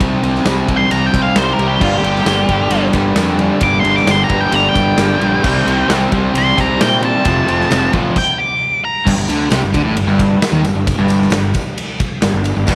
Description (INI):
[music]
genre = classic rock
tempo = 132 BPM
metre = 4/4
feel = straight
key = G minor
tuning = A4 = 440 Hz
[part]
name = crunchy overdriven guitar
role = riff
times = 0.0-12.8 s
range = F2 to C4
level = -20 LUFS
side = equal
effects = none
[part]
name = distorted electric guitar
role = riff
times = 0.0-12.8 s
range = F2 to G4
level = -23 LUFS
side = equal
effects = none
[part]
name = fuzz fingered electric bass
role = bass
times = 0.0-12.8 s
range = F1 to Bb2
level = -22 LUFS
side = equal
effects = overdrive
[part]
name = big rock drum kit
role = drums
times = 0.0-12.8 s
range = crash cymbal, kick drum, ride cymbal, snare drum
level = -21 LUFS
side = equal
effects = none
[part]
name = tambourine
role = percussion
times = 0.5-12.8 s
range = none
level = -37 LUFS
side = equal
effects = none
[part]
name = octave-fuzz lead guitar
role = melody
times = 0.8-9.1 s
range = F4 to D6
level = -19 LUFS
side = equal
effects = distortion
[part]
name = cranked stack guitar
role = riff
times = 1.8-8.1, 12.7-12.8 s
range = F2 to C4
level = -23 LUFS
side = equal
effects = overdrive
[sound]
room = light reverb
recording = none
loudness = -14 LUFS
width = mono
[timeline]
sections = 0.0-9.1 A section; 9.1-12.8 B section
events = lead electric guitar solo 0.0-9.1; stop 8.2-9.1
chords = 0.0 Cm; 1.8 Gm; 5.4 Cm7; 7.3 F; 9.1 G5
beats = | 0.00 0.46 0.91 1.36 | 1.82 2.27 2.72 3.18 | 3.63 4.08 4.54 4.99 | 5.44 5.90 6.35 6.80 | 7.25 7.71 8.16 8.61 | 9.06 9.51 9.96 10.42 | 10.87 11.32 11.77 12.22 | 12.67